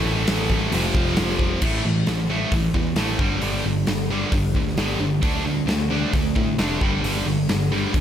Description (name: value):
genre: hard rock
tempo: 133 BPM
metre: 4/4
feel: straight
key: A minor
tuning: A4 = 439 Hz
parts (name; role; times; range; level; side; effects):
- scooped high-gain guitar; riff; 0.0-8.0 s; F2 to D4; -23 LUFS; equal; distortion
- picked electric bass; bass; 0.0-8.0 s; F1 to A2; -26 LUFS; equal; none
- huge arena drum kit; drums; 0.3-8.0 s; crash cymbal, hi-hat, kick drum, snare drum; -24 LUFS; equal; none
room: studio reverb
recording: none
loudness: -19 LUFS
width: side -10 dB against mid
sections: 0.0-1.6 A section; 1.6-8.0 B section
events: none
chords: 0.0 A5; 0.7 F5; 1.6 A5; 3.2 G5; 5.2 D5; 6.8 G5